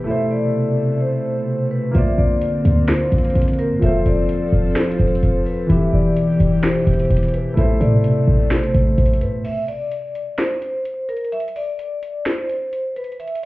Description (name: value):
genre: hip hop, trap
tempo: 128 BPM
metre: 4/4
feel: half-time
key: A minor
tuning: A4 = 440 Hz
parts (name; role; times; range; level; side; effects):
- warm grand piano; accompaniment; 0.0-9.5 s; E3 to D5; -23 LUFS; left 1 dB; low-pass filter
- airy breathy pad; sustained chords; 0.0-9.4 s; B2 to A4; -22 LUFS; equal; chorus
- short 808-style bass; bass; 0.0-9.4 s; D1 to Bb2; -18 LUFS; equal; none
- vibraphone with medium mallets; melody; 0.1-13.5 s; Bb4 to E5; -24 LUFS; left 1 dB; low-pass filter
- trap drum kit; drums; 1.9-13.4 s; crash cymbal, finger snaps, hi-hat, snare drum; -24 LUFS; equal; none
room: little or no reverb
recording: heard muffled through a wall, club reverb, vinyl crackle, EQ, nothing above 7.9 kHz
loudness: -16 LUFS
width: side -18 dB against mid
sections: 0.0-9.4 A section; 9.4-13.5 B section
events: break 0.1-1.9, 9.4-13.5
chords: 0.1 Amadd9; 1.9 Bbadd9; 3.8 F; 5.7 Em; 7.6 Amadd9; 9.4 N.C.